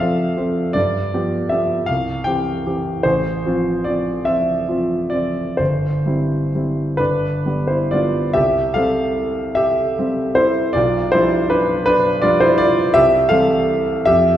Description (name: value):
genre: classical, romantic character piece for solo piano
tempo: 41-56 BPM (dotted quarters)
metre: 6/8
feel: rubato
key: C major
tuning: A4 = 439 Hz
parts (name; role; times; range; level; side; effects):
- clear concert grand piano; solo; 0.0-14.4 s; G1 to G5; -15 LUFS; equal; none
room: wet recital hall reverb, RT60 1.4 s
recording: heard from further back in the room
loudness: -15 LUFS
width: side -11 dB against mid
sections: 0.0-8.4 A section; 8.4-14.4 B section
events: none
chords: 0.0 F; 0.7 G7; 1.9 C; 3.0 F/A; 5.6 C/G; 7.0 G; 8.4 C; 10.8 G7/B; 12.9 C